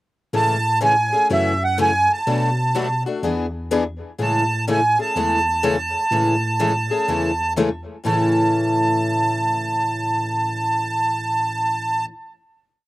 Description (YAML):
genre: acoustic string swing (jazz manouche)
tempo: 124 BPM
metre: 4/4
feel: swing 65% on 8ths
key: A major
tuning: A4 = 444 Hz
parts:
  - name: picked steel-string acoustic guitar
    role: accompaniment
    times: 0.3-12.1 s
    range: A2 to G#4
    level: -25 LUFS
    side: left 4 dB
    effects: slapback echo
  - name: picked steel-string acoustic guitar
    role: accompaniment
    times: 0.3-12.1 s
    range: A2 to B4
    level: -26 LUFS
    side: equal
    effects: none
  - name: tine electric piano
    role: bass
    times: 0.3-12.0 s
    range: E2 to B2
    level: -26 LUFS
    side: equal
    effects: overdrive
  - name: accordion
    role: melody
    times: 0.4-12.1 s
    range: E5 to A5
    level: -19 LUFS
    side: right 2 dB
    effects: light tremolo tuning, slapback echo
room: little or no reverb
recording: recorded outdoors, with no room sound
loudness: -18 LUFS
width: side -17 dB against mid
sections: 0.3-8.0 A section; 8.0-11.9 final chord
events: none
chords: 0.3 Amaj7; 1.3 F#m7; 2.3 Bm7; 3.2 E7; 4.2 Amaj7; 8.0 A